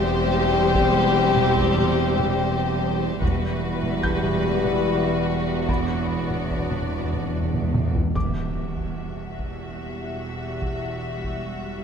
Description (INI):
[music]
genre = cinematic, suspense film score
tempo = 73 BPM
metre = 3/4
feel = straight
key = E minor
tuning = A4 = 439 Hz
[part]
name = rich symphonic violin section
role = melody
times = 0.0-11.8 s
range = B4 to E5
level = -32 LUFS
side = left 6 dB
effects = none
[part]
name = dark symphonic violin section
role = second line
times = 0.0-11.8 s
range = F#4 to G4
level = -29 LUFS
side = left 4 dB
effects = none
[part]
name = dark chamber viola section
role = accompaniment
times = 0.0-11.8 s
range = G3 to B3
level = -29 LUFS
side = left 2 dB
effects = none
[part]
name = clear French horn section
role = sustained chords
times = 0.0-7.8 s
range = F#3 to E4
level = -28 LUFS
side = left 4 dB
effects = none
[part]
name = rich symphonic cello section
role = bass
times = 0.0-11.8 s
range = E2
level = -30 LUFS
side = right 4 dB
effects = none
[part]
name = warm symphonic double bass section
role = bass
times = 0.0-11.8 s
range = E1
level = -28 LUFS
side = right 4 dB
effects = none
[part]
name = felt-muted upright piano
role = texture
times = 0.0-11.8 s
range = B5 to G6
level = -36 LUFS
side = left 1 dB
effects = none
[part]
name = solo taiko drums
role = drums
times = 0.7-11.8 s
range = none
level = -29 LUFS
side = equal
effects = none
[part]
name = timpani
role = percussion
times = 3.2-8.1 s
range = E2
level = -29 LUFS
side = equal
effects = none
[part]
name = impact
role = sound effects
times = 8.2-10.6 s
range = none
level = -36 LUFS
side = right 1 dB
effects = none
[sound]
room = moderate scoring stage reverb, RT60 2.0 s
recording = none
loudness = -20 LUFS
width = side -7 dB against mid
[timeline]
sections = 0.0-8.1 A section; 8.1-11.8 B section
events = timpani fill 5.7-8.1; drum fill 7.5-8.1; impact 8.1-10.6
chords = 0.0 C/E; 3.2 Emadd9; 5.7 D6/E; 8.1 Emadd9